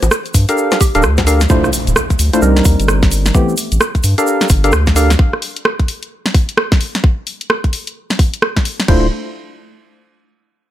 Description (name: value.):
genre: UK garage, two-step garage.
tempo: 130 BPM.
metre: 4/4.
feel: swing 62% on 16ths.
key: D minor.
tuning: A4 = 439 Hz.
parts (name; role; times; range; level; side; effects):
mallet-like synth pluck; melody; 0.0-1.4 s; G4; -26 LUFS; right 4 dB; phaser, analog chorus, ping-pong delay.
saturated sub bass; bass; 0.0-5.2, 8.9-9.1 s; D1 to G2; -13 LUFS; equal; none.
garage drum kit; drums; 0.0-8.9 s; bongos, hi-hat, rim click, snare drum; -17 LUFS; equal; small room ambience.
tube shaker; percussion; 0.0-5.2 s; none; -24 LUFS; right 4 dB; none.
garage drum kit; drums; 0.3-9.0 s; crash cymbal, kick drum; -13 LUFS; equal; small room ambience.
percussive organ stab; stabs; 0.5-5.1, 8.9-9.1 s; E3 to F5; -16 LUFS; equal; chorus, tape echo.
impact; sound effects; 1.5-3.3 s; none; -24 LUFS; equal; none.
room: light reverb.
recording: none.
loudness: -11 LUFS.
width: side -13 dB against mid.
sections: 0.0-1.5 A section; 1.5-8.9 B section; 8.9-10.7 C section.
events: drop 0.0-1.5; impact 1.5-3.3.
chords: 0.3 Gm9; 1.5 Dm9; 2.4 Cm9; 3.3 Am9; 4.0 Gm9; 5.2 N.C.; 8.9 Dm9.